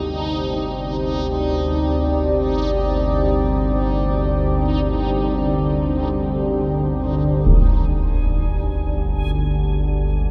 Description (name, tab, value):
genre	dark ambient drone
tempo	free time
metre	none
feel	none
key	unclear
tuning	A4 = 441 Hz
part	deep dark ambient pad	sustained chords	0.0-10.3 s	Bb3 to Eb5	-25 LUFS	equal	chorus, built-in reverb, shimmer reverb
part	organ-like drone	drone	0.0-10.3 s	G1 to D2	-23 LUFS	equal	ensemble chorus, built-in reverb
part	backwards swelling texture	texture	0.0-10.3 s	Eb4 to Ab5	-32 LUFS	equal	built-in reverb, shimmer reverb
part	concert bass drum	percussion	7.5-7.6 s	none	-23 LUFS	equal	low-pass filter on kick
room	wet cathedral reverb, RT60 5.3 s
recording	in a vast, echoing space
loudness	-20 LUFS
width	mono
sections	0.0-7.5 A section; 7.5-10.3 B section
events	none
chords	0.0 Cm; 7.5 Ebm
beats	free time